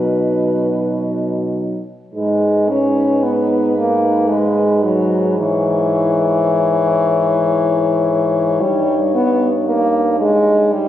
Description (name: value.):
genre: classical, lyrical piece for horn quartet.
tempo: 56 BPM.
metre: 3/4.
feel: rubato.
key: G# minor.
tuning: A4 = 440 Hz.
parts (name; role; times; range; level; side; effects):
clear French horn; melody; 0.0-10.9 s; B4 to C#5; -22 LUFS; left 6 dB; none.
mellow French horn; second line; 0.0-10.9 s; D#4 to E4; -22 LUFS; right 4 dB; none.
mellow French horn; accompaniment; 0.0-10.9 s; E3 to C#4; -16 LUFS; left 1 dB; none.
mellow French horn; bass; 0.0-10.9 s; G2 to B2; -21 LUFS; right 2 dB; none.
room: moderate scoring stage reverb, RT60 1.9 s.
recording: recorded on a phone in the room, club reverb.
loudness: -14 LUFS.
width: side -12 dB against mid.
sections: 0.0-2.2 A section; 2.2-10.9 B section.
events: none.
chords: 0.0 B; 2.2 G#m; 5.4 C#m/G#; 8.6 D#7/G.